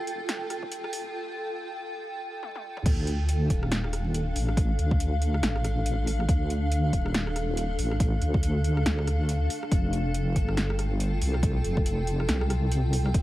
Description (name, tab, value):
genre	deep dubstep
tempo	140 BPM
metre	4/4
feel	swing 59% on 16ths, half-time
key	D phrygian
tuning	A4 = 440 Hz
part	granular cloud pad	sustained chords	0.0-13.2 s	D4 to G5	-33 LUFS	left 1 dB	built-in reverb
part	deep soft wobble bass	bass	0.0-13.2 s	Eb1 to D2	-26 LUFS	equal	chorus
part	deep house drum kit	drums	0.1-13.2 s	crash cymbal, hi-hat, rim click, snare drum, toms	-33 LUFS	equal	overdrive
part	electronic kick drum	drums	0.6-13.2 s	none	-26 LUFS	equal	overdrive
room	digital ambience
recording	vinyl crackle, high-pass filter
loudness	-24 LUFS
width	side -16 dB against mid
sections	0.0-2.9 A section; 2.9-13.2 B section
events	build-up 0.0-2.9; filter sweep 0.0-2.9; break 1.1-2.9; drum fill 2.4-2.9; drop 2.9-13.2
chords	0.0 Fadd9; 2.9 Dm; 9.7 Fadd9